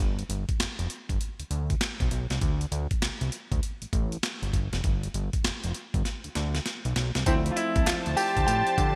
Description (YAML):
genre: R&B, new jack swing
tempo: 99 BPM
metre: 4/4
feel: swing 63% on 16ths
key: D dorian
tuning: A4 = 440 Hz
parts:
  - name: fat analog bass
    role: bass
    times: 0.0-8.9 s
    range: F1 to D3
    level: -32 LUFS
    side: equal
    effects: none
  - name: breakbeat sampler-style drum kit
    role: drums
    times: 0.2-9.0 s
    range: handclaps, hi-hat, kick drum, snare drum, tambourine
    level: -31 LUFS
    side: equal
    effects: gated reverb
  - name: bright concert grand piano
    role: melody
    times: 7.3-9.0 s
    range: C4 to G4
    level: -28 LUFS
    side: equal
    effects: none
  - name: warm analog keys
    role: accompaniment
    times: 7.3-9.0 s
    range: F3 to E4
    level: -35 LUFS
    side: equal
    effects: chorus
  - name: lush unison pad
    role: sustained chords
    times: 7.6-9.0 s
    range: F3 to A5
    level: -34 LUFS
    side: equal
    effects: chorus
  - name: group handclap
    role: percussion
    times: 7.9-8.1 s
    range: none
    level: barely audible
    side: none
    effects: none
room: light reverb, digital ambience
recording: bright 1980s-style digital production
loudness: -28 LUFS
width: mono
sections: 0.0-7.3 A section; 7.3-9.0 B section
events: drum fill 6.1-7.3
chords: 0.0 G7; 2.4 D7(no3); 4.8 G7; 7.3 Dm7